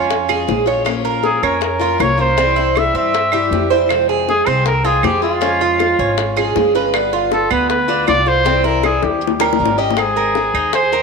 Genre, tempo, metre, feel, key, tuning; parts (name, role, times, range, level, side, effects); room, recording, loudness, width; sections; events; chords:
latin, Cuban son and guajira; 158 BPM; 4/4; straight; F harmonic minor; A4 = 440 Hz
warm trumpet; melody; 0.0-11.0 s; F4 to E5; -17 LUFS; equal
picked steel-string acoustic guitar; accompaniment; 0.0-11.0 s; C3 to Ab4; -23 LUFS; left 10 dB
Cuban tres; arpeggios; 0.0-11.0 s; B3 to Eb5; -18 LUFS; right 7 dB
upright bass; bass; 0.0-11.0 s; G1 to G2; -23 LUFS; left 1 dB
bongos; percussion; 0.1-11.0 s; -22 LUFS; left 13 dB
claves; percussion; 0.3-10.7 s; -25 LUFS; right 12 dB
wet echo chamber reverb, RT60 1.7 s; 1960s-style stereo with parts hard left and right; -13 LUFS; side -4 dB against mid
0.0-10.0 A section; 10.0-11.0 B section
drum fill 9.0-10.0
0.0 Db; 0.9 Bbm; 2.4 C; 3.9 Fm; 5.4 Db; 6.9 G7; 8.5 C; 9.2 Eb7; 10.0 Abadd9